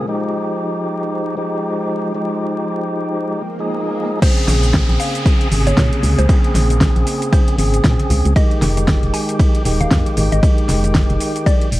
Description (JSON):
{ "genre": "deep house", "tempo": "116 BPM", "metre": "4/4", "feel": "swing 59% on 16ths", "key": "Bb dorian", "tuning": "A4 = 440 Hz", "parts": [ { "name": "hollow soft pad", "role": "sustained chords", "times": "0.0-11.8 s", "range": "F3 to G5", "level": "-28 LUFS", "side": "equal", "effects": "chorus, sidechain pumping" }, { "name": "tonewheel organ", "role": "stabs", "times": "0.0-11.7 s", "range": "C3 to Ab4", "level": "-21 LUFS", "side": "equal", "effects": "overdrive, fast rotary speaker, sidechain pumping, analog delay" }, { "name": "swell and downlifter", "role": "sound effects", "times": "3.4-8.4 s", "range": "none", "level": "-28 LUFS", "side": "right 1 dB", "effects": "none" }, { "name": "mallet-like synth pluck", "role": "melody", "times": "4.2-11.8 s", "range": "C5 to Ab5", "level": "-26 LUFS", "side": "equal", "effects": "chorus, phaser, analog delay" }, { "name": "deep house drum kit", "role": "drums", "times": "4.2-11.8 s", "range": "crash cymbal, hi-hat, ride cymbal, shaker, snare drum", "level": "-22 LUFS", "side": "equal", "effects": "overdrive, low-pass filter on cymbals, low-pass filter on perc, low-pass filter on hats, low-pass filter on snare" }, { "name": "electronic kick drum", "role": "drums", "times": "4.2-11.6 s", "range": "none", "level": "-15 LUFS", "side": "equal", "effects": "overdrive" }, { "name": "organ-like FM bass", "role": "bass", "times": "4.5-11.8 s", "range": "Eb1 to Bb2", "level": "-16 LUFS", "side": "equal", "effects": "sidechain pumping" }, { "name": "congas", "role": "percussion", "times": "4.5-11.1 s", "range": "none", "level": "-26 LUFS", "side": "left 1 dB", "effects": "none" } ], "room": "digital ambience", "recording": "vinyl crackle", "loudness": "-14 LUFS", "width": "side -17 dB against mid", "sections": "0.0-4.2 A section; 4.2-11.8 B section", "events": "filter sweep 0.0-4.2; swell 3.4-4.2; drop 4.2-11.8", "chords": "0.1 Fm9; 4.2 Bbm9; 8.4 Fm9", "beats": "| 0.08 0.60 1.12 1.64 | 2.15 2.67 3.19 3.70 | 4.22 4.74 5.26 5.77 | 6.29 6.81 7.33 7.84 | 8.36 8.88 9.39 9.91 | 10.43 10.95 11.46" }